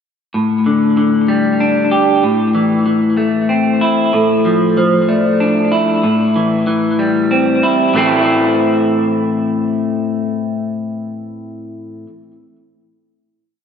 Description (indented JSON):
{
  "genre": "post-rock",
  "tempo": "94 BPM",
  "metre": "3/4",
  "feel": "straight",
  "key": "A minor",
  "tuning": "A4 = 440 Hz",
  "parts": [
    { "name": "electric guitar through a small old amp", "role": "arpeggios", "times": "0.3-12.1 s", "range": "A2 to G4", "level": "-13 LUFS", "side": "left 1 dB", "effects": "wide subtle chorus, ping-pong delay" },
    { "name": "vibraphone with medium hard mallets", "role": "arpeggios", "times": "4.1-5.7 s", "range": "A4 to D5", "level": "-18 LUFS", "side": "right 4 dB", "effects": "ping-pong delay" }
  ],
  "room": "wet lush hall reverb, RT60 1.9 s, studio ambience",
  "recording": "dreamy mix soaked in reverb",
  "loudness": "-12 LUFS",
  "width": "side -7 dB against mid",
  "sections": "0.3-7.9 A section; 7.9-11.8 final chord",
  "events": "none",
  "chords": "0.3 Gsus2/A; 2.2 Am; 4.1 Dmadd9/A; 6.0 C/A; 7.9 Am",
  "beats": "| 0.34 0.97 1.60 | 2.23 2.86 3.50 | 4.13 4.76 5.40 | 6.03 6.67 7.31 | 7.95 8.59 9.23 | 9.87 10.52 11.16"
}